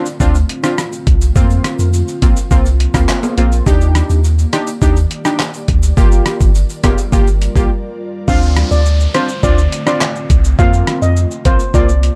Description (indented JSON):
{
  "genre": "dancehall",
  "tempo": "104 BPM",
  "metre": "4/4",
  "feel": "straight",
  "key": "D phrygian",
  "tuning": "A4 = 442 Hz",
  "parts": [
    { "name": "synth brass stab", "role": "accompaniment", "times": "0.0-11.9 s", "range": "Bb3 to G4", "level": "-21 LUFS", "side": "equal", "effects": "chorus" },
    { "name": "ethereal airy pad", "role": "sustained chords", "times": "0.0-12.2 s", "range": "D3 to D5", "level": "-29 LUFS", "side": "equal", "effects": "ensemble chorus, built-in reverb" },
    { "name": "dusty soul sampler-style drum kit", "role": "drums", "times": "0.1-12.2 s", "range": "handclaps, hi-hat, kick drum, rim click, shaker", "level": "-17 LUFS", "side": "equal", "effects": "overdrive" },
    { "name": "tube shaker and timbales", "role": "percussion", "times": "0.1-7.7 s", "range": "none", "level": "-30 LUFS", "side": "equal", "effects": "none" },
    { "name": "punchy sub bass", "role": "bass", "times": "0.2-12.1 s", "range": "F1 to F2", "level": "-15 LUFS", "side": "equal", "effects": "none" },
    { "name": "steel pan", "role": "melody", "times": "8.3-11.9 s", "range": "C5 to F5", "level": "-22 LUFS", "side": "equal", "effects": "none" },
    { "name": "downlifter", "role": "sound effects", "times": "8.3-12.2 s", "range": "none", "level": "-32 LUFS", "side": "equal", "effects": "none" }
  ],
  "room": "little or no reverb",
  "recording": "dark, warm production",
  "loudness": "-13 LUFS",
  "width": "mono",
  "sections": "0.0-8.3 A section; 8.3-12.2 B section",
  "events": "break 7.7-8.3",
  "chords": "0.0 Dm7; 1.4 Fsus4; 3.7 Ebmaj7; 6.0 Gm7; 8.3 Dm7; 10.6 Fsus4"
}